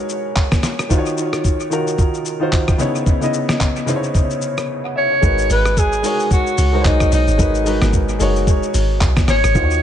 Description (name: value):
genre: amapiano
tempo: 111 BPM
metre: 4/4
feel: swing 58% on 16ths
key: unclear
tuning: A4 = 440 Hz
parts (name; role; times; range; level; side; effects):
- warm baby grand piano; accompaniment; 0.0-9.8 s; C#3 to F#5; -20 LUFS; equal; dub echo
- dusty soul sampler-style drum kit; drums; 0.1-9.8 s; handclaps, hi-hat, kick drum, rim click, shaker, snare drum; -18 LUFS; equal; dub echo
- breathy alto saxophone; melody; 5.0-9.8 s; D#4 to C#5; -18 LUFS; equal; dub echo
- deep log drum bass; bass; 5.2-9.8 s; F#1 to D#2; -17 LUFS; equal; none
room: digital ambience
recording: echo-heavy mix, nothing above 10.3 kHz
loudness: -14 LUFS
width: side -10 dB against mid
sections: 0.0-5.2 A section; 5.2-9.8 B section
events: drop 5.2-9.8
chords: 0.0 G#m7; 0.9 D#m7; 2.8 C#m7; 5.2 G#m7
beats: 0.36 | 0.90 1.44 1.99 2.52 | 3.07 3.61 4.15 4.69 | 5.23 5.77 6.31 6.85 | 7.39 7.93 8.47 9.01 | 9.55